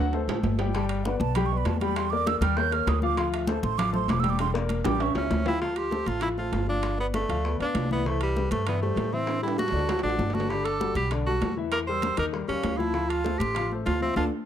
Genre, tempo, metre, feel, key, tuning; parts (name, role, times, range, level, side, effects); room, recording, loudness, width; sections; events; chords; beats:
Afro-Cuban jazz; 196 BPM; 4/4; straight; D minor; A4 = 440 Hz
warm grand piano; accompaniment; 0.0-14.3 s; D3 to G5; -30 LUFS; left 7 dB
upright bass; bass; 0.0-14.3 s; E1 to A2; -30 LUFS; right 1 dB
congas; percussion; 0.1-14.2 s; -32 LUFS; left 1 dB
timbales; percussion; 0.1-14.2 s; -35 LUFS; right 8 dB
breathy mellow concert flute; second line; 0.7-14.3 s; B4 to G6; -33 LUFS; right 12 dB
bongos; percussion; 0.7-14.2 s; -38 LUFS; left 4 dB
bright tenor saxophone; melody; 5.2-14.2 s; G3 to C5; -29 LUFS; right 1 dB
small room ambience; dry, close 1970s-style studio recording; -24 LUFS; side -10 dB against mid
0.0-5.6 A section; 5.6-14.5 B section
drum fill 0.0-0.7, 4.4-5.6, 9.3-10.5; flute solo 0.0-5.6; band accent 14.2
0.1 D5; 0.7 G; 2.0 Em7b5; 2.6 Ebsus2; 3.2 Dm9; 4.4 Em7b5; 5.0 A; 5.6 Dm7; 6.8 G9; 8.1 Cmaj7; 9.3 A5; 9.9 D; 10.5 Gmaj9; 11.7 Edim; 12.3 Eb9; 12.9 Dm7
0.13 0.44 | 0.74 1.05 1.35 1.66 | 1.96 2.27 2.57 2.88 | 3.18 3.48 3.79 4.09 | 4.39 4.70 5.00 5.31 | 5.61 5.92 6.22 6.53 | 6.83 7.14 7.44 7.75 | 8.05 8.36 8.66 8.97 | 9.28 9.58 9.89 10.19 | 10.50 10.80 11.11 11.42 | 11.72 12.03 12.34 12.64 | 12.95 13.25 13.56 13.87 | 14.17